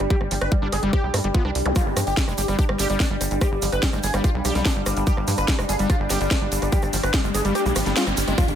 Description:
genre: psychedelic trance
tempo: 145 BPM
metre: 4/4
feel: straight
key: unclear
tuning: A4 = 444 Hz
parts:
  - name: wide unison lead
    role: melody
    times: 0.0-8.6 s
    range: G3 to B4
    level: -27 LUFS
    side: equal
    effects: phaser, sidechain pumping, ping-pong delay
  - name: tight sequencer bass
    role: bass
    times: 0.0-8.6 s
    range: F1 to G2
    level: -25 LUFS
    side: equal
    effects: tube saturation
  - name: garage drum kit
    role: drums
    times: 0.0-8.6 s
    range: hi-hat, rim click, snare drum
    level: -27 LUFS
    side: equal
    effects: overdrive
  - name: ethereal airy pad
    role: texture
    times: 0.0-8.4 s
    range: D4 to G5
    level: -32 LUFS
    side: right 1 dB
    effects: ensemble chorus, built-in reverb, sidechain pumping
  - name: screaming distorted acid line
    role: riff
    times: 0.1-8.4 s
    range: F3 to G4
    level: -30 LUFS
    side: equal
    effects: distortion, chorus, auto-pan, sidechain pumping, ping-pong delay
  - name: electronic kick drum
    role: drums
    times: 0.1-8.5 s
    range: none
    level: -21 LUFS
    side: equal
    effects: overdrive
  - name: zap, riser and impact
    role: sound effects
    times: 1.7-1.8, 6.8-8.6 s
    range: none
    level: -31 LUFS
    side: equal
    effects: none
  - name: bubbling stepped-filter texture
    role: sustained chords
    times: 1.8-8.6 s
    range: G3 to D4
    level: -31 LUFS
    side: left 1 dB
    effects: chorus, built-in reverb, sidechain pumping
  - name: egg shaker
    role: percussion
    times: 1.8-8.6 s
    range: none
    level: -33 LUFS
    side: right 4 dB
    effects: none
room: digital ambience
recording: none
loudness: -19 LUFS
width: side -9 dB against mid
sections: 0.0-8.4 A section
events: riser 6.8-8.4; kick drops out 7.6-8.4; band accent 8.0; impact 8.4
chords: 0.0 G5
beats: | 0.10 0.52 0.93 1.34 | 1.76 2.17 2.59 3.00 | 3.41 3.83 4.24 4.66 | 5.07 5.48 5.90 6.31 | 6.72 7.14 7.55 7.97 | 8.38

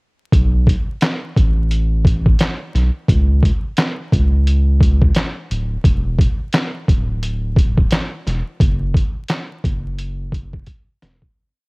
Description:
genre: hip hop, boom-bap hip-hop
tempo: 87 BPM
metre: 4/4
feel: swing 59% on 16ths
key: unclear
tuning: A4 = 440 Hz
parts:
  - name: soft dub sub bass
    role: bass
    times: 0.3-11.3 s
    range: D1 to C#2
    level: -17 LUFS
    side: equal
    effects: none
  - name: trip hop sampler-style drum kit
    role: drums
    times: 0.3-11.3 s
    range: handclaps, hi-hat, kick drum, snare drum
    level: -16 LUFS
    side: equal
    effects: cassette tape
room: little or no reverb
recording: home recording on cassette, vinyl crackle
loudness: -15 LUFS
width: side -35 dB against mid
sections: 0.3-11.4 hook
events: fade-out 8.6-11.4; drum fill 10.7-11.4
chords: none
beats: | 0.33 1.01 1.71 2.40 | 3.08 3.77 4.46 5.15 | 5.84 6.53 7.22 7.91 | 8.60 9.29 9.98 10.67

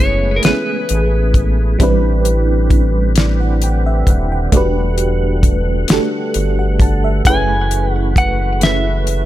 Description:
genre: slow six-eight R&B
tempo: 44 BPM (dotted quarters)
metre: 6/8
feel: straight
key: F# minor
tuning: A4 = 440 Hz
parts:
  - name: clean electric guitar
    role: melody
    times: 0.0-1.4, 7.3-9.3 s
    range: A#4 to G#5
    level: -19 LUFS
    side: left 1 dB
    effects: ping-pong delay
  - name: FM electric piano with tremolo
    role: accompaniment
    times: 0.0-9.3 s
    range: G3 to A5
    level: -19 LUFS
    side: right 2 dB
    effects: phaser
  - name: percussive tonewheel organ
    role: sustained chords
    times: 0.0-9.3 s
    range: D3 to F#5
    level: -25 LUFS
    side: left 1 dB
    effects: overdrive, chorus vibrato, slow rotary speaker
  - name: rubbery square bass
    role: bass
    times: 0.0-9.3 s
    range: D#1 to A1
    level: -16 LUFS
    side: equal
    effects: none
  - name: damped 70s drum kit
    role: drums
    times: 0.4-9.3 s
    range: hi-hat, kick drum, snare drum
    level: -14 LUFS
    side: equal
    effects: none
room: studio reverb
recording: none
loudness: -12 LUFS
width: side -14 dB against mid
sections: 0.0-9.3 A section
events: none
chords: 0.0 F#m11; 1.8 Am11; 4.5 Em11; 7.3 F#m11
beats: 0.43 | 1.80 3.16 | 4.53 5.89 | 7.25 8.62

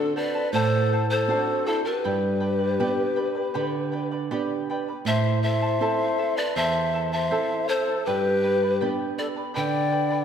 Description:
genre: andean folk, Andean ensemble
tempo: 80 BPM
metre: 4/4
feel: straight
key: unclear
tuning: A4 = 440 Hz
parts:
  - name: breathy mellow pan flute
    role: melody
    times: 0.0-10.2 s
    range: A4 to G5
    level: -26 LUFS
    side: left 1 dB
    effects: none
  - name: breathy reedy large quena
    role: second line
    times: 0.0-10.2 s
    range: D4 to D5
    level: -29 LUFS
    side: left 4 dB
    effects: none
  - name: charango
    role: accompaniment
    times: 0.0-10.2 s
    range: E4 to B5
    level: -31 LUFS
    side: equal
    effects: none
  - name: nylon-string guitar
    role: accompaniment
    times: 0.0-10.2 s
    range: E2 to A4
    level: -27 LUFS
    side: right 4 dB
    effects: none
room: wet scoring stage reverb, RT60 1.7 s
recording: none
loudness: -22 LUFS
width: side -8 dB against mid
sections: 0.0-10.2 A section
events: none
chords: 0.0 D7; 2.0 G; 5.1 Am; 8.1 G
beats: 0.54 1.29 | 2.05 2.80 3.56 4.31 | 5.06 5.81 6.57 7.32 | 8.06 8.81 9.56

